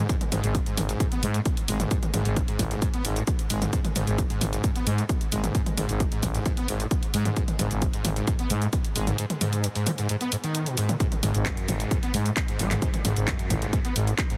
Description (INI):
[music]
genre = driving peak-time techno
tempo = 132 BPM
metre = 4/4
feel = straight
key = G# phrygian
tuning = A4 = 442 Hz
[part]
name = screaming distorted acid line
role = riff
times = 0.0-14.4 s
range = F#2 to B3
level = -32 LUFS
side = equal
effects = distortion, ensemble chorus, sidechain pumping, tape echo
[part]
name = growling FM bass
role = bass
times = 0.0-14.1 s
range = G#1 to G#2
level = -30 LUFS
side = equal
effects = sidechain pumping
[part]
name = electronic kick drum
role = drums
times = 0.1-14.3 s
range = none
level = -29 LUFS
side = equal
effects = none
[part]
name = techno drum kit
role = drums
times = 0.1-14.4 s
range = handclaps, hi-hat, shaker, toms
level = -32 LUFS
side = equal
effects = sidechain pumping on hats, sidechain pumping on perc, sidechain pumping on toms
[sound]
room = light reverb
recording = heavily compressed radio sound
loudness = -26 LUFS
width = mono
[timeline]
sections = 0.0-14.4 A section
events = none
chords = none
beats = | 0.09 0.55 1.00 1.46 | 1.91 2.37 2.82 3.27 | 3.73 4.18 4.64 5.09 | 5.55 6.00 6.46 6.91 | 7.37 7.82 8.28 8.73 | 9.18 9.64 10.09 10.55 | 11.00 11.46 11.91 12.37 | 12.82 13.28 13.73 14.18